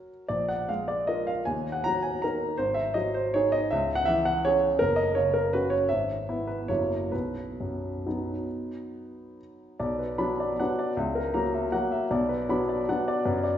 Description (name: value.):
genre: classical, piano waltz.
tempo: 127-174 BPM.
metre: 3/4.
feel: rubato.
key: B major, B minor from 9.8 s.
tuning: A4 = 441 Hz.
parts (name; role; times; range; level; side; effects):
clear grand piano; solo; 0.0-13.6 s; F#1 to B5; -25 LUFS; equal; none.
room: wet recital hall reverb, RT60 1.5 s.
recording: heard from further back in the room, nothing above 7.6 kHz.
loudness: -25 LUFS.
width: side -10 dB against mid.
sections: 0.0-9.8 A section; 9.8-13.6 B section.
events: none.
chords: 0.3 A#5; 1.5 D#m; 2.6 G#5; 3.7 C#m; 4.8 F#5; 5.9 E/G#; 6.7 F#7; 7.1 B; 9.8 Bm; 11.0 F#7/C#; 12.1 Bm.